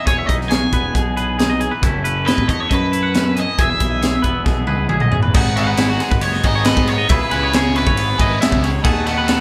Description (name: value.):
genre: math rock and midwest emo.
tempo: 137 BPM.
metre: 4/4.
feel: straight.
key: E major.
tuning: A4 = 440 Hz.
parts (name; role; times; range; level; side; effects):
raw garage guitar; melody; 0.0-9.4 s; B4 to G#5; -25 LUFS; equal; overdrive.
twangy electric guitar; accompaniment; 0.0-9.4 s; E2 to A4; -27 LUFS; equal; spring reverb.
twangy electric guitar; arpeggios; 0.0-9.4 s; F#4 to G#5; -26 LUFS; equal; none.
fuzz picked electric bass; bass; 0.1-9.4 s; E1 to G#2; -24 LUFS; equal; overdrive.
crisp fusion drum kit; drums; 0.1-9.4 s; crash cymbal, hi-hat, kick drum, ride cymbal, snare drum, toms; -20 LUFS; equal; none.
biting overdriven guitar; riff; 5.6-9.4 s; F#3 to A4; -28 LUFS; equal; none.
room: light reverb.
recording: band playing live in one room.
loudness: -17 LUFS.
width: mono.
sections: 0.0-5.3 A section; 5.3-9.4 B section.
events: drum fill 4.5-5.3.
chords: 0.0 Emaj7; 1.8 B9sus4/F#; 3.6 Emaj7; 5.3 G#m7; 7.1 C#m7; 8.8 B7/D#.